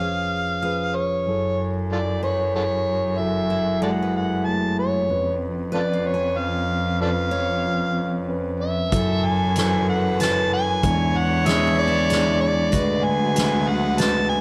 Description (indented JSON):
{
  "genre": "acoustic folk-pop ballad",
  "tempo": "94 BPM",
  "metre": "3/4",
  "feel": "straight",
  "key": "F# minor",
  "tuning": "A4 = 440 Hz",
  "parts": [
    { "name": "overdriven harmonica", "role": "melody", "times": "0.0-14.4 s", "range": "E#4 to A5", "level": "-26 LUFS", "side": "equal", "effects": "slapback echo" },
    { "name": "tine electric piano", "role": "accompaniment", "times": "0.0-14.4 s", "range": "E#1 to C#5", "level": "-27 LUFS", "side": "equal", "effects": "none" },
    { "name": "picked steel-string acoustic guitar", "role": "arpeggios", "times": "0.0-14.2 s", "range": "G#3 to G#5", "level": "-34 LUFS", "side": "equal", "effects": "slapback echo" },
    { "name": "warm cello", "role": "bass", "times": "1.3-14.4 s", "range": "D2 to F#2", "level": "-29 LUFS", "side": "equal", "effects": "none" },
    { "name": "warm violin", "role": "second line", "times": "8.9-14.4 s", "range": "A4 to C#5", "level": "-30 LUFS", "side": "equal", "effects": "none" },
    { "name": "clear symphonic string section", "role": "sustained chords", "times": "8.9-14.4 s", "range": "C#3 to F#4", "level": "-39 LUFS", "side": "equal", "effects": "none" },
    { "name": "soft-mallet drum kit", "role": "drums", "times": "8.9-14.1 s", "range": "hi-hat, kick drum, snare drum", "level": "-29 LUFS", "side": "equal", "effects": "none" }
  ],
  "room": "light reverb",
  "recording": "none",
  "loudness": "-22 LUFS",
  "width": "mono",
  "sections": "0.0-8.9 A section; 8.9-14.4 B section",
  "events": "none",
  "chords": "0.0 C#7/E#; 1.3 F#m7; 5.1 C#7/E#; 8.9 F#m7; 10.8 E7; 12.7 G#m7b5/D",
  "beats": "0.63 | 1.27 1.91 2.55 | 3.19 3.83 4.46 | 5.10 5.74 6.37 | 7.01 7.64 8.28 | 8.92 9.56 10.20 | 10.83 11.46 12.10 | 12.73 13.36 13.98"
}